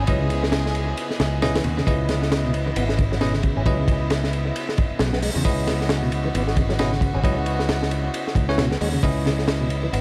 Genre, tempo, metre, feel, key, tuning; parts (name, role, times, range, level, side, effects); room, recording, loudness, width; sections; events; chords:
breakbeat, breaks; 134 BPM; 4/4; swing 58% on 16ths; C# minor; A4 = 440 Hz
warm chamber string section; sustained chords; 0.0-10.0 s; C#3 to D#5; -34 LUFS; equal; sidechain pumping
tonewheel organ; riff; 0.0-10.0 s; B2 to C#4; -31 LUFS; equal; overdrive, fast rotary speaker, dub echo
picked electric bass; bass; 0.0-10.0 s; G#1 to E2; -26 LUFS; equal
bell-like tine electric piano; stabs; 0.1-10.0 s; C#4 to D#5; -31 LUFS; equal; dub echo
crunchy breakbeat drum kit; drums; 0.1-10.0 s; hi-hat, kick drum, ride cymbal, snare drum; -26 LUFS; equal; dub echo
small room ambience; echo-heavy mix, vinyl crackle; -22 LUFS; mono
0.0-10.0 A section
0.0 C#m9